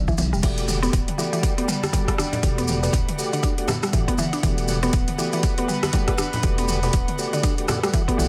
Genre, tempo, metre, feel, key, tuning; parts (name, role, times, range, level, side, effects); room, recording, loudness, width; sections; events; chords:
afro house; 120 BPM; 4/4; swing 59% on 16ths; E minor; A4 = 440 Hz
mallet-like synth pluck; arpeggios; 0.0-8.3 s; B2 to D4; -30 LUFS; equal; chorus, sidechain pumping, tape echo
smooth synth bass; bass; 0.0-8.3 s; D1 to B1; -28 LUFS; equal; sidechain pumping
electronic kick drum; drums; 0.1-8.2 s; -25 LUFS; equal; overdrive
maracas; percussion; 0.1-8.3 s; -34 LUFS; equal
deep house drum kit; drums; 0.2-8.3 s; crash cymbal, hi-hat, rim click, toms; -31 LUFS; equal; overdrive
congas; percussion; 0.2-8.3 s; -33 LUFS; equal
warm studio string section; sustained chords; 0.4-8.3 s; E3 to F#5; -33 LUFS; equal; vintage 12-bit sampler grit, sidechain pumping
mellow tonewheel organ; stabs; 0.4-8.3 s; A3 to D5; -32 LUFS; equal; overdrive, fast rotary speaker, sidechain pumping, tape echo
light reverb, digital ambience; -22 LUFS; mono
0.0-8.3 A section
0.0 Em11